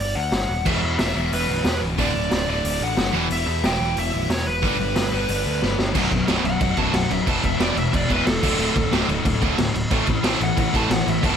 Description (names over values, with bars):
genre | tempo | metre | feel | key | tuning
punk rock | 182 BPM | 4/4 | straight | unclear | A4 = 439 Hz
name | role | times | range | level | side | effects
smooth overdriven lead guitar | melody | 0.0-11.4 s | A4 to A5 | -26 LUFS | equal | ping-pong delay
overdriven picked electric bass | bass | 0.0-11.3 s | B0 to E2 | -27 LUFS | equal | none
raw garage drum kit | drums | 0.0-11.3 s | crash cymbal, hi-hat, kick drum, snare drum | -23 LUFS | equal | none
distorted electric guitar | riff | 0.7-11.4 s | B1 to A3 | -27 LUFS | left 12 dB | distortion
distorted electric guitar | riff | 0.7-11.4 s | B1 to A3 | -26 LUFS | right 14 dB | overdrive
distorted electric guitar | riff | 0.7-11.4 s | B1 to A3 | -28 LUFS | left 1 dB | overdrive
room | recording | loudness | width
light reverb | none | -19 LUFS | side -8 dB against mid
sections
0.0-5.9 A section; 5.9-11.4 B section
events
drum fill 5.6-5.9; lead electric guitar solo 5.9-11.4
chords
0.0 G5; 0.7 E5; 2.0 D; 3.1 Em; 4.6 G; 5.9 B5; 7.3 E5; 8.4 D5; 9.9 A5